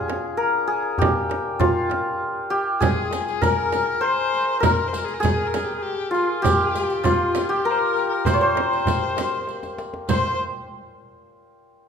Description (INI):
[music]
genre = Persian modal ensemble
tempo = 99 BPM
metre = 3/4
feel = straight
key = C dastgah shur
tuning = A4 = 441 Hz
[part]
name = santur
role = melody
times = 0.0-10.6 s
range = Db4+45c to Db5+45c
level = -22 LUFS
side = left 1 dB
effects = none
[part]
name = frame drum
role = percussion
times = 0.1-10.4 s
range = none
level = -27 LUFS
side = right 6 dB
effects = none
[part]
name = tombak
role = percussion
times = 0.1-10.4 s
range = none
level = -28 LUFS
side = left 1 dB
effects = none
[part]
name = clear kamancheh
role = second line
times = 2.8-10.4 s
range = F4 to C5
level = -26 LUFS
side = left 6 dB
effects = none
[part]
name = riq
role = percussion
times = 2.8-10.4 s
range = none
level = -33 LUFS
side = right 3 dB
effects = none
[sound]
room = wet recital hall reverb, RT60 1.8 s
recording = minimal, uncompressed stereo recording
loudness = -19 LUFS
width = side -7 dB against mid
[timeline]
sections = 0.0-10.1 A section; 10.1-11.9 B section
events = drum fill 9.5-10.1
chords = none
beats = 0.40 | 1.00 1.61 2.21 | 2.82 3.42 4.03 | 4.64 5.24 5.85 | 6.45 7.06 7.67 | 8.27 8.88 9.48 | 10.09